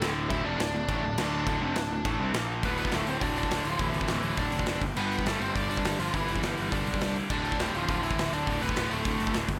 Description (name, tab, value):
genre	punk rock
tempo	206 BPM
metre	4/4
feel	straight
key	unclear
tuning	A4 = 440 Hz
part	smooth overdriven lead guitar	melody	0.0-9.4 s	E3 to A5	-35 LUFS	equal	none
part	fuzz guitar	riff	0.0-9.6 s	D2 to C4	-40 LUFS	equal	none
part	overdriven electric guitar	riff	0.0-9.5 s	D2 to C4	-36 LUFS	equal	none
part	sludgy distorted guitar	riff	0.0-9.5 s	D2 to C4	-39 LUFS	equal	none
part	fuzz picked electric bass	bass	0.0-9.6 s	D1 to C2	-37 LUFS	equal	overdrive
part	big rock drum kit	drums	0.0-9.6 s	crash cymbal, hi-hat, kick drum, snare drum	-35 LUFS	equal	none
room	light reverb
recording	none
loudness	-29 LUFS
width	mono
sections	0.0-2.6 A section; 2.6-9.6 B section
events	none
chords	0.0 Dm; 2.3 Bb5; 2.6 D5; 4.8 G; 7.3 Dm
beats	0.01 | 0.30 0.60 0.89 1.18 | 1.47 1.76 2.06 2.35 | 2.64 2.93 3.22 3.51 | 3.81 4.10 4.39 4.68 | 4.97 5.26 5.56 5.85 | 6.14 6.43 6.72 7.01 | 7.31 7.60 7.89 8.18 | 8.47 8.76 9.05 9.34